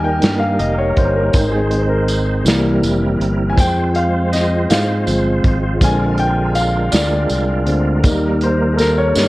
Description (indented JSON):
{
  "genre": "slow gospel",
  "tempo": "54 BPM (dotted quarters)",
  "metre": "6/8",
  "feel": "straight",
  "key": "unclear",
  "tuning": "A4 = 440 Hz",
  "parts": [
    { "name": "warm concert grand piano", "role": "accompaniment", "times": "0.0-9.3 s", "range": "D3 to Ab5", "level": "-18 LUFS", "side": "left 1 dB", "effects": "none" },
    { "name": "bright tonewheel organ", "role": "sustained chords", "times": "0.0-9.3 s", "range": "G3 to C5", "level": "-21 LUFS", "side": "right 2 dB", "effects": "slow rotary speaker, chorus vibrato" },
    { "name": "fingered electric bass", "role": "bass", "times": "0.0-9.3 s", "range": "F1 to Ab2", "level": "-19 LUFS", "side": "equal", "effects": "none" },
    { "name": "warm soul drum kit", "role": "drums", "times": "0.2-9.3 s", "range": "hi-hat, kick drum, snare drum", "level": "-17 LUFS", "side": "equal", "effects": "none" },
    { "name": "tambourine", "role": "percussion", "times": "1.3-9.3 s", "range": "none", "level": "-28 LUFS", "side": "right 3 dB", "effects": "none" }
  ],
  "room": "light reverb, studio ambience",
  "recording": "worn, warbling old tape, cassette tape, warbly pitch drift",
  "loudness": "-13 LUFS",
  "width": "side -18 dB against mid",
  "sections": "0.0-9.3 A section",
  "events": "grand piano solo 0.0-9.3",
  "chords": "0.0 Eb; 1.3 Ab; 2.5 C7; 3.6 Fm; 5.8 Bb7; 8.0 Eb"
}